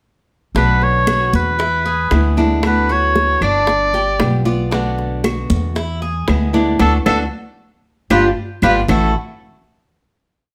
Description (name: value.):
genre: latin, Cuban son and guajira.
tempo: 115 BPM.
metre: 4/4.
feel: straight.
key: A major.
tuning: A4 = 439 Hz.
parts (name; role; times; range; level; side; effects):
nylon-string guitar; accompaniment; 0.5-9.1 s; A2 to F#4; -24 LUFS; equal; none.
upright bass; bass; 0.5-9.1 s; G1 to E2; -21 LUFS; equal; none.
warm oboe; melody; 0.6-9.1 s; A4 to D5; -19 LUFS; equal; none.
Cuban tres; arpeggios; 0.6-9.1 s; A3 to D5; -24 LUFS; equal; none.
bongos; percussion; 0.6-9.0 s; none; -26 LUFS; equal; none.
congas; percussion; 0.6-9.0 s; none; -25 LUFS; equal; none.
claves; percussion; 1.1-9.0 s; none; -32 LUFS; equal; none.
room: light reverb.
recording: none.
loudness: -16 LUFS.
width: mono.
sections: 0.6-8.9 montuno (vamp); 8.9-10.5 final chord.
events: band accent 6.8-8.9; drum fill 8.1-8.9.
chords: 0.6 Bm7; 1.6 E7; 2.6 D6; 3.7 G7; 4.7 Bm7; 5.8 E7; 6.8 D6; 7.8 G7; 8.9 A6.